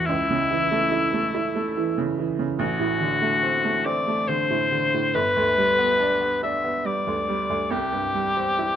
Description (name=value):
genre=classical, romantic duo for cor anglais and grand piano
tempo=70 BPM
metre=3/4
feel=rubato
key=G major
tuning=A4 = 440 Hz
part: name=warm cor anglais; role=melody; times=0.0-8.8 s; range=E4 to E5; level=-22 LUFS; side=left 3 dB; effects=none
part: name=bright baby grand piano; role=accompaniment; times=0.0-8.8 s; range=G1 to E4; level=-25 LUFS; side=right 4 dB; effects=none
room=light reverb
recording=dark, warm production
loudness=-20 LUFS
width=side -9 dB against mid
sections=0.0-8.8 A section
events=none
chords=0.1 A/C#; 2.6 D7/A; 5.2 G; 7.7 C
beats=| 0.08 0.92 1.77 | 2.60 3.44 4.29 | 5.16 6.00 6.86 | 7.72 8.60